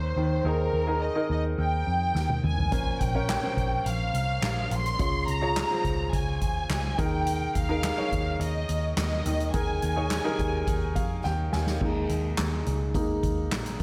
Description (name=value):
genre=piano-driven pop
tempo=106 BPM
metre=4/4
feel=straight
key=unclear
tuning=A4 = 440 Hz
part: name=warm studio violin section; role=melody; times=0.0-11.2 s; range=Bb4 to C6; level=-33 LUFS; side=equal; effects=plate reverb
part: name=warm concert grand piano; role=accompaniment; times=0.0-13.8 s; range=Bb2 to Ab5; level=-34 LUFS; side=equal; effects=plate reverb
part: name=vintage muted picked electric bass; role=bass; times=0.0-13.8 s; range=Bb1 to F2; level=-32 LUFS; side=equal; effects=none
part: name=soft-mallet drum kit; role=drums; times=2.2-13.8 s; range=crash cymbal, handclaps, hi-hat, kick drum, snare drum, toms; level=-33 LUFS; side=equal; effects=none
room=moderate large studio reverb, RT60 0.8 s, studio ambience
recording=none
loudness=-27 LUFS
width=mono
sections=0.0-11.8 A section; 11.8-13.8 B section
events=drum fill 2.2-2.7, 11.2-11.8; grand piano fill 10.7-11.8; grand piano solo 11.8-13.8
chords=0.0 Ebsus4; 2.7 Bbmadd9; 5.0 Db; 7.0 Ebsus4